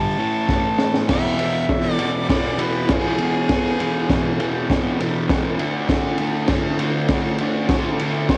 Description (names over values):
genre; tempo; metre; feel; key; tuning
garage rock duo or trio; 100 BPM; 4/4; straight; E mixolydian; A4 = 442 Hz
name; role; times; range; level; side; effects
clear harmonica; melody; 0.0-4.7, 8.3-8.4 s; G#4 to A5; -28 LUFS; equal; overdrive, cassette tape
fuzz guitar; riff; 0.0-8.4 s; E2 to D4; -24 LUFS; equal; distortion
crunchy breakbeat drum kit; drums; 0.5-8.4 s; crash cymbal, kick drum, ride cymbal, snare drum; -24 LUFS; equal; cassette tape
room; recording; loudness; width
small room ambience; home recording on cassette; -20 LUFS; mono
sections
0.0-1.1 A section; 1.1-8.4 B section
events
harmonica solo 0.0-1.1; drum fill 0.5-1.1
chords
0.2 A5; 1.1 E; 5.6 D5